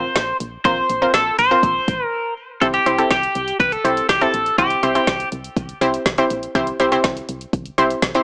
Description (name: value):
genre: synth-pop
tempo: 122 BPM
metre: 4/4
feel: straight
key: C mixolydian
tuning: A4 = 440 Hz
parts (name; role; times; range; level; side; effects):
- twelve-string electric guitar; melody; 0.0-5.3 s; G4 to C5; -18 LUFS; equal; none
- analog pluck; accompaniment; 0.0-8.2 s; C4 to C5; -18 LUFS; equal; chorus
- solid FM bass; bass; 0.0-8.2 s; A1 to C2; -30 LUFS; equal; none
- deep house drum kit; drums; 0.2-8.2 s; hi-hat, kick drum, snare drum; -22 LUFS; equal; none
room: light reverb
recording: dry, gritty hardware recording, small speaker sound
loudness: -16 LUFS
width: side -37 dB against mid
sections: 0.0-2.6 A section; 2.6-8.2 B section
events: break 2.1-2.6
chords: 0.0 Bbsus2; 2.6 C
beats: 0.16 | 0.65 1.14 1.63 2.12 | 2.62 3.11 3.60 4.09 | 4.58 5.08 5.57 6.06 | 6.55 7.04 7.54 8.03